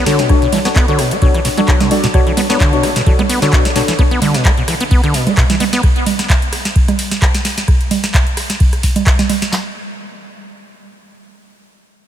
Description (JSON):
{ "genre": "acid house", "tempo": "130 BPM", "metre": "4/4", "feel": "swing 55% on 16ths", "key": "B minor", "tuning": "A4 = 442 Hz", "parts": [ { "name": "acid bass, saw", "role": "riff", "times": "0.0-5.8 s", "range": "B2 to B3", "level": "-18 LUFS", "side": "equal", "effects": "tube saturation, diffuse ambient delay" }, { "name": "deep mellow chord stab", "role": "stabs", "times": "0.1-3.9 s", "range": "D4 to D5", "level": "-18 LUFS", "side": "left 4 dB", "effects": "chorus, diffuse ambient delay" }, { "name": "booming analog drum machine", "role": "drums", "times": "0.1-9.5 s", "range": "congas, handclaps, hi-hat, ride cymbal, rim click, snare drum", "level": "-17 LUFS", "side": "right 3 dB", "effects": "none" }, { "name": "booming analog drum machine", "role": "drums", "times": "0.3-9.6 s", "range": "handclaps, kick drum, snare drum", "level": "-13 LUFS", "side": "equal", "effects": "none" } ], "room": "light reverb, digital ambience", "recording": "none", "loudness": "-11 LUFS", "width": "side -10 dB against mid", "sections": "0.0-9.5 A section; 9.5-12.1 B section", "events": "drop 0.0-9.5", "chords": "0.0 Bm7; 9.5 N.C.", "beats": "| 0.29 0.76 1.22 1.68 | 2.14 2.60 3.06 3.52 | 3.99 4.45 4.91 5.37 | 5.83 6.29 6.76 7.22 | 7.68 8.14 8.60 9.06 | 9.53" }